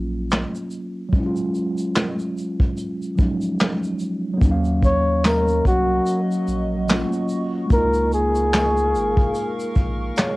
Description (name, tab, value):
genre	lo-fi hip hop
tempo	73 BPM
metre	4/4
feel	swing 58% on 16ths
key	Eb minor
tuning	A4 = 439 Hz
part	mellow tine electric piano	accompaniment	0.0-10.4 s	F3 to F5	-24 LUFS	equal	medium stereo tremolo, low-pass filter, cassette tape
part	round analog bass	bass	0.0-10.1 s	Ab1 to Eb2	-25 LUFS	equal	none
part	vintage brush drum kit	drums	0.3-10.4 s	handclaps, hi-hat, kick drum, shaker, snare drum	-20 LUFS	equal	none
part	warbly tape-like pad	sustained chords	5.4-10.4 s	Gb3 to Db6	-28 LUFS	right 1 dB	chorus, built-in reverb, phaser, low-pass filter, cassette tape, plate reverb
part	breathy flugelhorn	melody	4.9-9.6 s	Gb4 to Db5	-22 LUFS	left 1 dB	low-pass filter, tape echo, plate reverb
part	tambourine	percussion	5.2-10.4 s	none	-43 LUFS	right 4 dB	none
room	light reverb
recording	home recording on cassette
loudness	-18 LUFS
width	side -21 dB against mid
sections	0.0-4.4 A section; 4.4-10.4 A section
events	none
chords	0.0 Ebm7 (rootless); 1.1 Ebm11; 4.4 Ebm7; 7.7 Db6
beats	0.31 | 1.13 1.95 2.77 3.60 | 4.42 5.24 6.06 6.88 | 7.71 8.53 9.35 10.17